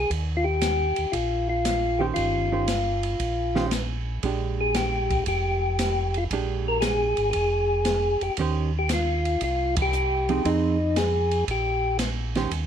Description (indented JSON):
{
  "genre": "soul jazz organ trio",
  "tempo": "116 BPM",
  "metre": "4/4",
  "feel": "swing 69% on 8ths",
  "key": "Eb major",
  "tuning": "A4 = 437 Hz",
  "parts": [
    { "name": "percussive tonewheel organ", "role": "melody", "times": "0.0-12.0 s", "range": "Eb4 to Bb4", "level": "-24 LUFS", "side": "left 2 dB", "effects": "slow rotary speaker" },
    { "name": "mellow tonewheel organ", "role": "bass", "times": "0.0-12.7 s", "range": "F1 to F2", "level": "-28 LUFS", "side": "equal", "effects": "slow rotary speaker" },
    { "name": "open jazz drum kit", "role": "drums", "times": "0.1-12.7 s", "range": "hi-hat, kick drum, ride cymbal, snare drum", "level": "-31 LUFS", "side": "right 1 dB", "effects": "none" },
    { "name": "hollow-body jazz guitar", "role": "accompaniment", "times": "2.0-12.5 s", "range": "Eb3 to C5", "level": "-28 LUFS", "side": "right 8 dB", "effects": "none" }
  ],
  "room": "light reverb",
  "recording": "none",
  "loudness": "-22 LUFS",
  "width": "side -8 dB against mid",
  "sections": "0.0-12.5 A section",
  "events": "band accent 9.7",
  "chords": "0.1 Eb13; 4.2 Bb6; 8.4 Eb13; 9.4 C5; 10.4 Fm7; 11.5 Bbsus2"
}